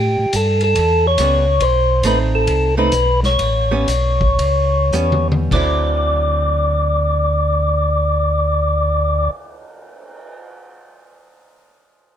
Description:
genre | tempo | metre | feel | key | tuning
soul jazz organ trio | 99-141 BPM | 4/4 | swing 66% on 8ths | D mixolydian | A4 = 440 Hz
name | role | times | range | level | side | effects
percussive tonewheel organ | melody | 0.0-9.3 s | G4 to D5 | -17 LUFS | left 1 dB | slow rotary speaker
mellow tonewheel organ | bass | 0.0-9.3 s | A1 to A2 | -18 LUFS | equal | slow rotary speaker
vintage drum kit | drums | 0.3-10.3 s | crash cymbal, cymbal swell, hi-hat, kick drum, ride cymbal, snare drum, toms | -25 LUFS | left 1 dB | none
archtop guitar, miked and amplified | accompaniment | 1.2-9.4 s | D3 to E4 | -24 LUFS | right 6 dB | none
room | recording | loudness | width
light reverb | none | -14 LUFS | side -9 dB against mid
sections
0.0-5.5 A section; 5.5-10.4 B section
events
slowing down 1.6-5.5; drum fill 4.9-5.5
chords
0.0 A9; 1.6 B7b9; 3.4 A9; 5.5 D9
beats
0.34 0.76 1.19 | 1.61 2.04 2.48 2.92 | 3.39 3.87 4.38 4.93 | 5.51 6.12 6.73 7.34 | 7.95 8.55 9.16 9.77

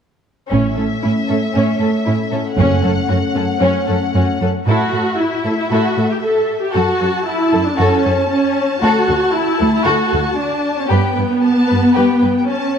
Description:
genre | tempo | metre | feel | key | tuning
cinematic, heroic adventure film score | 115 BPM | 4/4 | straight | A mixolydian | A4 = 439 Hz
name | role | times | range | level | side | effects
warm symphonic violin section | melody | 0.5-12.8 s | E5 to A5 | -26 LUFS | left 5 dB | none
rich studio violin section | second line | 0.5-12.3 s | C#4 to B4 | -22 LUFS | left 2 dB | none
warm symphonic viola section | accompaniment | 0.5-12.8 s | B3 to A4 | -17 LUFS | equal | none
dark French horn section | sustained chords | 0.5-4.4 s | A3 to C#4 | -23 LUFS | left 3 dB | none
rich symphonic double bass section | bass | 0.5-2.8 s | F#1 to A1 | -20 LUFS | right 4 dB | none
warm symphonic cello section | bass | 0.5-12.3 s | D2 to A2 | -19 LUFS | right 2 dB | none
room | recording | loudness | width
moderate scoring stage reverb, RT60 2.0 s | none | -14 LUFS | side -7 dB against mid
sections
0.5-4.7 A section; 4.7-12.8 B section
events
none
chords
0.5 A; 2.6 F#m; 4.7 A5; 6.7 F#m; 8.8 D; 10.9 G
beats
| 0.51 1.03 1.55 2.06 | 2.58 3.09 3.61 4.13 | 4.67 5.19 5.71 6.23 | 6.75 7.27 7.79 8.30 | 8.82 9.34 9.86 10.38 | 10.91 11.44 11.96 12.49

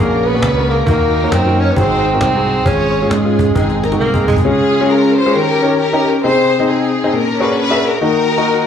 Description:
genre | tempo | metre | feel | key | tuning
uptempo gospel | 134 BPM | 4/4 | swing 62% on 8ths | Db major | A4 = 439 Hz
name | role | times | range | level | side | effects
warm symphonic string section | melody | 0.0-8.7 s | C4 to Db5 | -17 LUFS | left 3 dB | plate reverb, slapback echo
warm tenor saxophone | melody | 0.0-4.4 s | Ab3 to Db4 | -18 LUFS | right 4 dB | plate reverb, slapback echo
warm grand piano | accompaniment | 0.0-8.7 s | Ab2 to Fb5 | -16 LUFS | left 2 dB | plate reverb, slapback echo
mellow French horn section | sustained chords | 0.0-4.4 s | Eb3 to F#4 | -27 LUFS | right 2 dB | none
fingered electric bass | bass | 0.0-4.4 s | Ab1 to Ab2 | -18 LUFS | right 1 dB | none
cajon | drums | 0.3-4.4 s | none | -19 LUFS | equal | none
room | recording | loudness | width
moderate club reverb, RT60 0.6 s | live gig heard through the venue's PA, club reverb | -11 LUFS | side -8 dB against mid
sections
0.0-4.4 A section; 4.4-8.7 B section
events
drum fill 3.6-4.4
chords
0.0 Bb7alt; 0.9 Ebm; 1.8 Ab7; 2.7 Db/Ab; 3.6 Ab; 4.4 Db; 5.3 Eb7; 6.2 Ab/C; 7.1 Bb7alt; 8.0 Ebm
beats
0.42 | 0.87 1.32 1.76 2.21 | 2.66 3.11 3.55 4.00 | 4.45 4.89 5.34 5.78 | 6.23 6.67 7.12 7.56 | 8.01 8.45

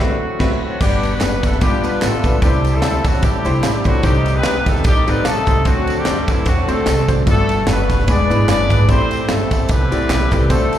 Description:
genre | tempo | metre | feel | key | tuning
uptempo gospel | 149 BPM | 4/4 | swing 56% on 8ths | G major | A4 = 440 Hz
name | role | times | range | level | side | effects
clean lap steel guitar | melody | 0.0-0.6 s | F#4 | -38 LUFS | right 3 dB | none
clear horn section | melody | 0.0-10.8 s | E3 to D5 | -20 LUFS | left 2 dB | plate reverb, slapback echo, tape echo
clear baby grand piano | accompaniment | 0.0-10.8 s | G2 to B5 | -22 LUFS | left 2 dB | plate reverb, slapback echo
tonewheel organ | sustained chords | 0.0-10.8 s | D3 to F#5 | -26 LUFS | right 4 dB | fast rotary speaker, overdrive, plate reverb
upright bass | bass | 0.0-10.8 s | E1 to F#2 | -19 LUFS | right 1 dB | none
crisp fusion drum kit | drums | 0.0-10.8 s | crash cymbal, kick drum, ride cymbal, snare drum | -19 LUFS | equal | none
tambourine and handclaps | percussion | 0.8-10.8 s | none | -31 LUFS | right 4 dB | slapback echo
room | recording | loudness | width
light reverb | live gig heard through the venue's PA, recital hall reverb | -14 LUFS | side -11 dB against mid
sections
0.8-10.8 A section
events
band accent 0.0-0.8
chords
0.0 D13; 0.8 Gmaj7; 1.6 G7; 2.4 C69; 4.0 Cm6; 5.7 D7; 7.3 Gmaj9; 8.1 E7; 8.9 Am9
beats
0.00 0.40 | 0.81 1.21 1.61 2.02 | 2.42 2.83 3.23 3.63 | 4.04 4.44 4.84 5.25 | 5.65 6.06 6.46 6.86 | 7.27 7.67 8.07 8.48 | 8.88 9.29 9.69 10.09 | 10.50

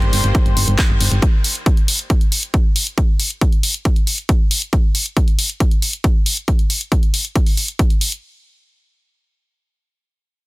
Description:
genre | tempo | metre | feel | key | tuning
uplifting trance | 137 BPM | 4/4 | straight | unclear | A4 = 439 Hz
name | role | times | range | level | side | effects
lush unison pad | sustained chords | 0.0-1.2 s | Eb3 to C5 | -26 LUFS | left 1 dB | chorus, sidechain pumping
solid FM bass | bass | 0.0-1.2 s | G1 | -17 LUFS | equal | sidechain pumping
punchy analog drum machine | drums | 0.0-8.2 s | handclaps, hi-hat | -20 LUFS | left 1 dB | none
electronic kick drum | drums | 0.3-7.9 s | none | -15 LUFS | equal | overdrive
room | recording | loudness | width
digital ambience | dense, heavily limited modern master | -14 LUFS | side -22 dB against mid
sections
0.0-8.2 A section; 8.2-10.5 B section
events
none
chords
0.0 Eb/G; 1.2 N.C.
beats
0.35 0.79 | 1.22 1.66 2.10 2.54 | 2.98 3.41 3.85 4.29 | 4.73 5.17 5.60 6.04 | 6.48 6.92 7.36 7.79

